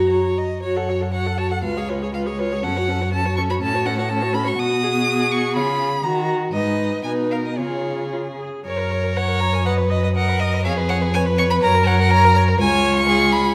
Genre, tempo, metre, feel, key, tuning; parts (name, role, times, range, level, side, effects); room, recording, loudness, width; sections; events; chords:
quick classical-period movement for string quartet; 122 BPM; 2/4; rubato; F# minor, F# major from 4.6 s; A4 = 440 Hz
rich violin; melody; 0.0-13.5 s; C#5 to D#6; -25 LUFS; equal
rich violin; second line; 0.0-13.5 s; E#4 to F#5; -28 LUFS; equal
rich viola; accompaniment; 0.0-13.5 s; C#4 to D#5; -27 LUFS; equal
rich cello; bass; 0.0-13.5 s; C#2 to D#3; -24 LUFS; equal
moderate scoring stage reverb, RT60 1.6 s; -20 LUFS; mono
0.6-8.7 A section; 8.7-13.5 B section
0.0 F#; 0.6 F#m; 1.6 C#7; 2.6 F#m; 3.6 F#m/A; 4.6 G#m7/B; 5.6 C#; 6.0 D#m; 6.5 G#m; 7.6 C#; 8.7 F#; 9.7 B/F#; 10.6 C#7/E#; 11.6 F#; 12.6 C#